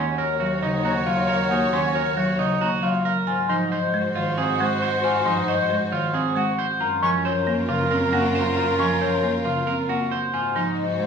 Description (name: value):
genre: classical, minimalist pattern music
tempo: 136 BPM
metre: 4/4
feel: straight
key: unclear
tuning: A4 = 440 Hz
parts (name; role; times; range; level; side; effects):
- vibraphone with soft mallets; melody; 0.0-11.1 s; Db5 to Bb5; -27 LUFS; left 9 dB; none
- clear clarinet; second line; 0.0-11.1 s; Bb4 to Db5; -30 LUFS; right 3 dB; none
- folk marimba with medium hard mallets; accompaniment; 0.0-11.1 s; Db3 to C4; -26 LUFS; equal; none
- rich studio string section; sustained chords; 0.0-11.1 s; F4 to Db5; -30 LUFS; left 4 dB; none
- electric guitar at the edge of break-up; arpeggios; 0.0-10.8 s; Db4 to C5; -25 LUFS; right 6 dB; none
- silver concert flute; arpeggios; 0.0-10.6 s; Bb5 to Db6; -30 LUFS; left 3 dB; none
- warm cello; bass; 0.0-11.1 s; Eb2 to Ab2; -31 LUFS; right 2 dB; none
room: wet recital hall reverb, RT60 1.6 s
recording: minimal, uncompressed stereo recording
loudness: -20 LUFS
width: side -6 dB against mid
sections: 0.0-11.1 A section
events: none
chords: 0.0 Ebm9; 3.3 Ab7; 6.8 Gbmaj7; 10.3 Ab7